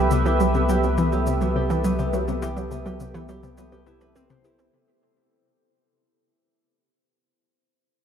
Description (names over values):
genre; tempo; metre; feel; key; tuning
ambient, sequencer-driven space music; 104 BPM; 4/4; straight; unclear; A4 = 440 Hz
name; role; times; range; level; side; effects
sweeping resonant pad; sustained chords; 0.0-4.7 s; G4 to E5; -26 LUFS; right 2 dB; chorus
concert harp; arpeggios; 0.0-7.2 s; B3 to C5; -31 LUFS; left 4 dB; auto-pan, analog delay
analog pluck; riff; 0.0-4.7 s; C3 to G4; -26 LUFS; equal; chorus, analog delay
warm sub bass; bass; 0.0-4.7 s; C2; -26 LUFS; equal; none
bubbling stepped-filter texture; texture; 0.0-4.7 s; A3 to A4; -35 LUFS; equal; none
cabasa and bongos; percussion; 0.1-4.7 s; none; -42 LUFS; equal; analog delay
room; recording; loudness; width
wet cathedral reverb, RT60 6.5 s; in a vast, echoing space; -20 LUFS; side -8 dB against mid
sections
0.0-4.7 A section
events
fade-out 0.0-4.7; filter sweep on synth arpeggio sound 0.0-4.7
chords
0.0 Cmaj7